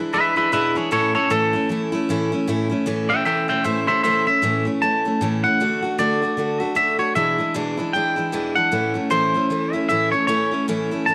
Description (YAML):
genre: rock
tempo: 154 BPM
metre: 4/4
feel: swing 60% on 8ths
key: A major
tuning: A4 = 442 Hz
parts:
  - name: picked steel-string acoustic guitar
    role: accompaniment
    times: 0.0-11.1 s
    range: E2 to F#4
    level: -24 LUFS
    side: equal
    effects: none
  - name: twangy electric guitar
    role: melody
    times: 0.1-11.1 s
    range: G#4 to A5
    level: -22 LUFS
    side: equal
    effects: tape echo
room: light reverb, studio ambience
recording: none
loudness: -20 LUFS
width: mono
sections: 0.0-2.5 A section; 2.5-11.1 A section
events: clean electric guitar solo 0.0-11.1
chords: 0.0 E7; 0.9 A; 5.6 D; 7.2 E7; 8.7 A